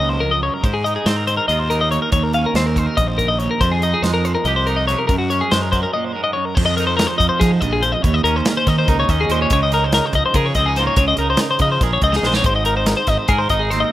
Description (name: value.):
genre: math rock and midwest emo.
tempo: 284 BPM (eighths).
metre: 7/8.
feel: straight.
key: Ab major.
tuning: A4 = 440 Hz.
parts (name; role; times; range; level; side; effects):
twangy electric guitar; accompaniment; 0.0-13.9 s; Eb2 to Bb4; -23 LUFS; right 8 dB; none.
twelve-string electric guitar; arpeggios; 0.0-13.9 s; Gb4 to F5; -18 LUFS; left 3 dB; spring reverb.
fuzz fingered electric bass; bass; 0.0-13.8 s; Ab1 to F3; -21 LUFS; equal; overdrive.
modern studio drum kit; drums; 0.6-13.8 s; crash cymbal, hi-hat, kick drum, snare drum; -21 LUFS; equal; none.
room: small room ambience.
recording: rough home demo mix.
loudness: -15 LUFS.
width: side -14 dB against mid.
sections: 0.0-6.6 A section; 6.6-13.9 B section.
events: break 5.9-6.6; drum fill 12.1-12.5.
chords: 0.0 Gbmaj9; 0.6 Abadd9; 2.1 Eb5; 3.6 Fm11; 5.1 Gbadd9; 6.6 Fm7; 8.0 Eb7sus4; 9.5 Db69; 12.5 Ab.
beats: 0.21 0.42 | 0.63 0.84 1.06 1.27 1.48 1.69 1.91 | 2.12 2.33 2.54 2.75 2.97 3.18 3.39 | 3.60 3.82 4.03 4.24 4.45 4.66 4.87 | 5.09 5.30 5.51 5.72 5.93 6.14 6.35 | 6.56 6.77 6.99 7.20 7.41 7.62 7.83 | 8.04 8.25 8.46 8.67 8.88 9.09 9.30 | 9.51 9.72 9.93 10.14 10.35 10.56 10.77 | 10.98 11.19 11.40 11.61 11.82 12.03 12.24 | 12.46 12.66 12.88 13.09 13.30 13.51 13.72.